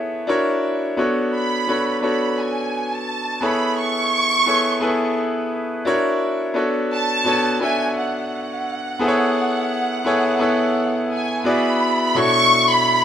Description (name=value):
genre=soul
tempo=86 BPM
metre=4/4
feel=swing 54% on 16ths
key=B dorian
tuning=A4 = 440 Hz
part: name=bright concert grand piano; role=accompaniment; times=0.0-13.0 s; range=B2 to E5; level=-20 LUFS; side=left 1 dB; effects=none
part: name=warm studio violin section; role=melody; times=1.3-13.0 s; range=F#5 to C#6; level=-20 LUFS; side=right 1 dB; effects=none
room=light reverb, studio reverb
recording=rough home demo mix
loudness=-17 LUFS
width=side -9 dB against mid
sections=0.0-12.1 A section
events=none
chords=0.3 F#7b13; 1.0 Bm7; 3.4 Amaj7; 5.9 F#7b13; 6.6 Bm7; 9.0 Amaj7; 11.4 E7; 12.1 Bm11